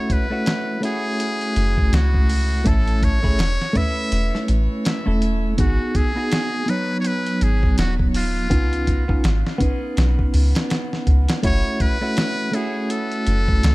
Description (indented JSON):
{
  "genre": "trip hop",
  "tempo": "82 BPM",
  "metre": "4/4",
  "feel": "swing 59% on 16ths",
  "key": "unclear",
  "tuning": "A4 = 438 Hz",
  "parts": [
    { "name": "trumpet with metal mute", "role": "melody", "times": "0.0-13.7 s", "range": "E#4 to E5", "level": "-26 LUFS", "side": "equal", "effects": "vintage 12-bit sampler grit, tape echo" },
    { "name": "clean electric guitar", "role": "accompaniment", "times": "0.0-13.7 s", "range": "F#3 to C#5", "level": "-24 LUFS", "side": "right 1 dB", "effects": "harmonic tremolo" },
    { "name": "dusty soul sampler-style drum kit", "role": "drums", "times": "0.1-13.7 s", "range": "hi-hat, kick drum, snare drum", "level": "-21 LUFS", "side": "equal", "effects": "none" },
    { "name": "soft 808-style bass", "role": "bass", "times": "1.6-13.7 s", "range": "D#1 to C#2", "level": "-19 LUFS", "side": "equal", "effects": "tube saturation" }
  ],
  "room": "digital ambience",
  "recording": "none",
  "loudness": "-18 LUFS",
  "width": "side -20 dB against mid",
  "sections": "0.0-13.7 A section",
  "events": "none",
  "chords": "0.0 F#m7; 2.7 A; 5.6 G#m7; 8.5 C#9; 11.4 F#m7"
}